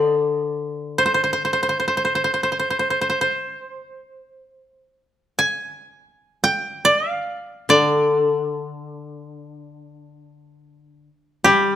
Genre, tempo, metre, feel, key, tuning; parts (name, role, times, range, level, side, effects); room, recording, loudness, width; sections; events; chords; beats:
japanese traditional, Japanese chamber music; free time; A4 = 442 Hz
koto; melody; 0.0-11.8 s; G4 to Ab5; -18 LUFS; right 1 dB
koto; accompaniment; 0.0-2.9, 7.7-11.8 s; D3 to G3; -21 LUFS; left 3 dB
light reverb; close, detailed microphones; -18 LUFS; side -11 dB against mid
0.0-11.8 A section
free time